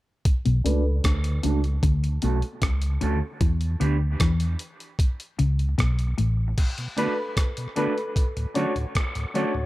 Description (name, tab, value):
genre	dub reggae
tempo	76 BPM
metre	4/4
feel	straight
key	B minor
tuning	A4 = 439 Hz
part	boom bap sampler-style drum kit	drums	0.3-9.5 s	crash cymbal, hi-hat, kick drum, rim click	-25 LUFS	equal	none
part	mellow tonewheel organ	accompaniment	0.5-0.6, 6.8-9.7 s	D2 to C#4	-30 LUFS	equal	slow rotary speaker, low-pass filter
part	mellow electric guitar	riff	0.5-6.4 s	A2 to E3	-30 LUFS	left 4 dB	wide subtle chorus, low-pass filter
part	vintage muted fingered electric bass	bass	0.5-6.5 s	A1 to E2	-23 LUFS	equal	none
part	mellow electric guitar	accompaniment	0.6-9.5 s	A3 to B4	-30 LUFS	right 4 dB	low-pass filter, dub echo
part	dark upright piano	stabs	0.6-0.8, 7.0-9.6 s	D4 to C#5	-29 LUFS	left 2 dB	low-pass filter, dub echo
room	light reverb, digital ambience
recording	none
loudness	-22 LUFS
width	side -17 dB against mid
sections	0.3-6.6 A section; 6.6-9.7 B section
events	filter sweep 0.3-6.6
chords	0.3 Bm7; 3.4 E7(no3); 6.6 Bm7; 8.2 Dmaj7